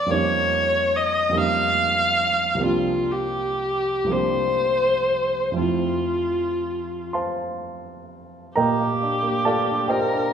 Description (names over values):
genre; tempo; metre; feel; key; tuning
classical, impressionist duo for viola and grand piano; 38-50 BPM (dotted quarters); 6/8; rubato; F major; A4 = 440 Hz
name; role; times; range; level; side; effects
rich viola; melody; 0.0-10.3 s; F4 to F5; -21 LUFS; left 1 dB; none
warm grand piano; accompaniment; 0.0-10.3 s; C2 to C6; -25 LUFS; right 3 dB; none
room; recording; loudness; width
wet recital hall reverb, RT60 1.5 s; minimal, uncompressed stereo recording; -20 LUFS; side -8 dB against mid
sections
0.0-8.6 A section; 8.6-10.3 B section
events
none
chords
0.1 Eb9/F; 2.6 C9sus4; 5.6 Fmaj7; 8.6 Bb6